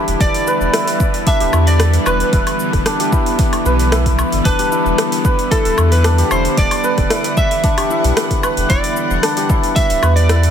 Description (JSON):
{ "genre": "organic downtempo", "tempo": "113 BPM", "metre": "4/4", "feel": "straight", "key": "E minor", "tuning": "A4 = 442 Hz", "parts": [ { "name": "bowed-like drone", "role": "sustained chords", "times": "0.0-10.5 s", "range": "D3 to F#5", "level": "-21 LUFS", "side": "equal", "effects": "built-in reverb, vintage 12-bit sampler grit, sidechain pumping" }, { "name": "santur", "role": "arpeggios", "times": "0.0-10.5 s", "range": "D4 to B4", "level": "-19 LUFS", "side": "left 1 dB", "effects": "vintage 12-bit sampler grit, ping-pong delay" }, { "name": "warm sub bass", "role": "bass", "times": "0.1-10.5 s", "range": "D1 to E2", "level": "-15 LUFS", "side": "equal", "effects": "sidechain pumping" }, { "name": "deep house drum kit", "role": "drums", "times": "0.1-10.5 s", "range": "cabasa, hi-hat, rim click, woodblock", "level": "-22 LUFS", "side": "left 1 dB", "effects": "overdrive, studio reverb" }, { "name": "electric slide guitar", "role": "melody", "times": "0.2-10.5 s", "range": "A4 to E5", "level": "-20 LUFS", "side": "equal", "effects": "ping-pong delay" }, { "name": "electronic kick drum", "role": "drums", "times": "0.2-9.9 s", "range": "none", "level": "-17 LUFS", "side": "equal", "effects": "overdrive, studio reverb" } ], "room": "little or no reverb", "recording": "dense, heavily limited modern master", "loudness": "-12 LUFS", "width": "side -8 dB against mid", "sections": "0.0-10.5 A section", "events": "none", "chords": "0.0 Em7", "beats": "| 0.20 0.74 1.27 1.80 | 2.33 2.86 3.39 3.92 | 4.45 4.98 5.51 6.05 | 6.58 7.11 7.64 8.17 | 8.70 9.23 9.76 10.29" }